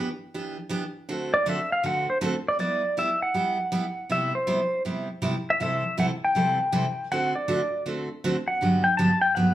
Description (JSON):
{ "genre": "country", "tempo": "160 BPM", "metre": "4/4", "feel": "swing 65% on 8ths", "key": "G major", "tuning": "A4 = 440 Hz", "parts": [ { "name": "picked steel-string acoustic guitar", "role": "accompaniment", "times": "0.0-9.5 s", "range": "G2 to A4", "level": "-27 LUFS", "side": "right 1 dB", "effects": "none" }, { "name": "pedal steel guitar", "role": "melody", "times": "1.3-9.5 s", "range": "C5 to A5", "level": "-24 LUFS", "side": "equal", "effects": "none" } ], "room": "wet large studio reverb, RT60 0.8 s", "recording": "band playing live in one room", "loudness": "-23 LUFS", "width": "side -13 dB against mid", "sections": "0.0-2.6 A section; 2.6-9.5 B section", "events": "pedal steel guitar solo 0.0-2.6", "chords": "0.0 Em7; 1.1 D7; 2.6 G6; 4.1 Cmaj7; 5.6 Am7/C; 7.1 D7; 8.6 Gmaj7" }